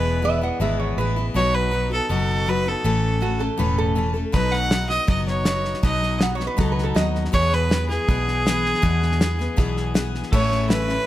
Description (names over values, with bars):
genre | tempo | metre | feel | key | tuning
honky-tonk and classic country | 160 BPM | 4/4 | straight | A lydian | A4 = 440 Hz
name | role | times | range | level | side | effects
clear fiddle | melody | 0.0-11.1 s | G#4 to F#5 | -24 LUFS | right 2 dB | none
picked steel-string acoustic guitar | accompaniment | 0.0-11.1 s | E2 to A4 | -25 LUFS | left 5 dB | none
vintage muted fingered electric bass | bass | 0.0-11.0 s | E1 to E2 | -24 LUFS | right 1 dB | none
lap resonator guitar | second line | 0.2-7.2 s | F#4 to F#5 | -26 LUFS | right 5 dB | none
damped 70s drum kit | drums | 4.3-10.9 s | crash cymbal, hi-hat, kick drum, snare drum | -23 LUFS | equal | none
pedal steel guitar | sustained chords | 10.3-11.1 s | A4 to E5 | -31 LUFS | right 3 dB | none
room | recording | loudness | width
light reverb | close, detailed microphones | -19 LUFS | side -14 dB against mid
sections
0.0-10.3 A section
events
none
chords
0.0 E; 1.4 B; 2.8 A; 4.3 B; 7.3 E; 10.3 A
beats
0.23 0.60 0.98 | 1.35 1.73 2.10 2.47 | 2.85 3.22 3.60 3.97 | 4.34 4.72 5.09 5.47 | 5.84 6.21 6.59 6.96 | 7.34 7.71 8.08 8.46 | 8.83 9.21 9.58 9.95 | 10.33 10.70